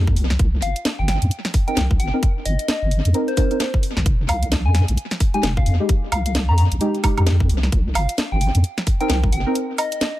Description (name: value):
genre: UK garage, two-step garage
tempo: 131 BPM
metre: 4/4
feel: swing 60% on 16ths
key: unclear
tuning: A4 = 440 Hz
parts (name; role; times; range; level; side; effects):
- deep mellow chord stab; stabs; 0.0-9.5 s; Ab3 to Bb4; -24 LUFS; equal; chorus, dub echo
- deep soft wobble bass; bass; 0.0-9.4 s; F1 to F2; -18 LUFS; equal; chorus
- electronic kick drum; drums; 0.1-9.3 s; none; -19 LUFS; equal; none
- garage drum kit; drums; 0.2-10.1 s; hi-hat, snare drum, woodblock; -25 LUFS; equal; tape echo
- soft struck synth lead; melody; 0.6-10.2 s; C5 to Bb5; -27 LUFS; left 2 dB; chorus, tape echo
room: little or no reverb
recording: echo-heavy mix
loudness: -17 LUFS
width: side -15 dB against mid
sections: 0.0-10.2 A section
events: filter sweep on synth stab 0.0-10.2; break 9.6-10.2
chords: 0.2 Cm7; 4.1 Fm9; 7.5 Cm7